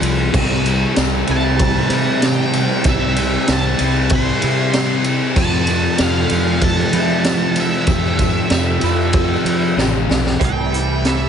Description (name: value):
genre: rock, shoegaze and dream pop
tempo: 95 BPM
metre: 4/4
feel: straight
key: C major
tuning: A4 = 439 Hz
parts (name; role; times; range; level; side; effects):
- phased string machine; sustained chords; 0.0-11.3 s; A4 to F6; -30 LUFS; right 1 dB; ensemble chorus, phaser
- picked twelve-string acoustic guitar; arpeggios; 0.0-11.3 s; G3 to A4; -30 LUFS; right 1 dB; none
- raw garage guitar; riff; 0.0-10.4 s; F2 to C4; -24 LUFS; right 1 dB; overdrive
- thick fuzz guitar; riff; 0.0-11.3 s; F2 to C4; -22 LUFS; left 12 dB; distortion, analog chorus
- twangy electric guitar; riff; 0.0-11.3 s; C3 to A4; -26 LUFS; right 11 dB; reverse reverb
- fuzz fingered electric bass; bass; 0.0-11.3 s; A1 to F3; -20 LUFS; right 1 dB; overdrive
- raw garage drum kit; drums; 0.0-11.2 s; crash cymbal, hi-hat, kick drum, ride cymbal, snare drum; -19 LUFS; right 1 dB; none
- tambourine; percussion; 0.0-10.4 s; none; -36 LUFS; right 18 dB; none
- octave-fuzz lead guitar; melody; 1.3-11.3 s; E5 to C6; -24 LUFS; right 3 dB; distortion, tape echo
room: small room reverb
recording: nothing above 10.7 kHz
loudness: -14 LUFS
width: side -8 dB against mid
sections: 0.0-10.4 A section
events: drum fill 9.8-10.4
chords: 0.3 C6; 5.4 Fmaj7; 10.4 C6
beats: | 0.33 0.96 1.59 2.22 | 2.85 3.48 4.11 4.74 | 5.37 6.00 6.63 7.26 | 7.89 8.52 9.15 9.78 | 10.41 11.04